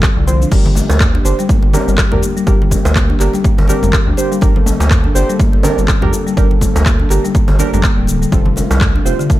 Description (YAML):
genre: afro house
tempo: 123 BPM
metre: 4/4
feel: swing 57% on 16ths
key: G minor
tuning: A4 = 436 Hz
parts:
  - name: warm analog pad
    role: sustained chords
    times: 0.0-9.4 s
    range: C3 to A4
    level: -25 LUFS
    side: left 1 dB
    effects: chorus, vintage 12-bit sampler grit, sidechain pumping
  - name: deep mellow chord stab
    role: stabs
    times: 0.0-9.2 s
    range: C4 to C5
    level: -21 LUFS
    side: right 4 dB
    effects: chorus, sidechain pumping, digital delay
  - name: round analog bass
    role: bass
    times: 0.0-9.1 s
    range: D1 to D2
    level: -16 LUFS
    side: equal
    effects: sidechain pumping
  - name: electronic kick drum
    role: drums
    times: 0.0-9.4 s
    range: none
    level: -14 LUFS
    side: equal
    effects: small room ambience
  - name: house drum kit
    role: drums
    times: 0.0-9.4 s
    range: crash cymbal, handclaps, rim click, shaker, toms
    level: -20 LUFS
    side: equal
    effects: small room ambience
  - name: congas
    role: percussion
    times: 0.0-9.4 s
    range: none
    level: -24 LUFS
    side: left 1 dB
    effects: none
  - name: buzzing marimba with soft mallets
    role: arpeggios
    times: 0.2-9.4 s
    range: D3 to G4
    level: -20 LUFS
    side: left 4 dB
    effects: sidechain pumping, digital delay
  - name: djembe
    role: percussion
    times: 0.5-9.4 s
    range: none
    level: -24 LUFS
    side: right 2 dB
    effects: none
room: digital ambience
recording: none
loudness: -10 LUFS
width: side -15 dB against mid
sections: 0.0-9.4 A section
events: none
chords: 0.0 F; 0.5 Gm; 8.3 F